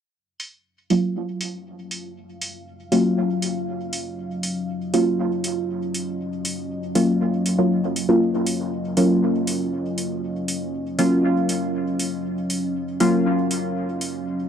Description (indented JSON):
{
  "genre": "dub techno",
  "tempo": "119 BPM",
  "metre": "4/4",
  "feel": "straight",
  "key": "Eb minor",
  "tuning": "A4 = 435 Hz",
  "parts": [
    { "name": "deep dark ambient pad", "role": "sustained chords", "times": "2.3-14.5 s", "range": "Gb3 to F5", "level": "-28 LUFS", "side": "equal", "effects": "chorus, built-in reverb" },
    { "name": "electronic hi-hat", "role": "drums", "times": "0.4-14.1 s", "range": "none", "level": "-28 LUFS", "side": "right 1 dB", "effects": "low-pass filter on hats" },
    { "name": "deep mellow chord stab", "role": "stabs", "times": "0.9-14.5 s", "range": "Gb3 to F4", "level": "-21 LUFS", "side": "equal", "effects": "chorus, phaser, dub echo" }
  ],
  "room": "light reverb, digital ambience",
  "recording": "dry, gritty hardware recording, transformer saturation",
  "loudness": "-20 LUFS",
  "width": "side -8 dB against mid",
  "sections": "0.1-14.5 A section",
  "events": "filter sweep on ambient pad 0.1-14.5",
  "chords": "0.1 Ebm9"
}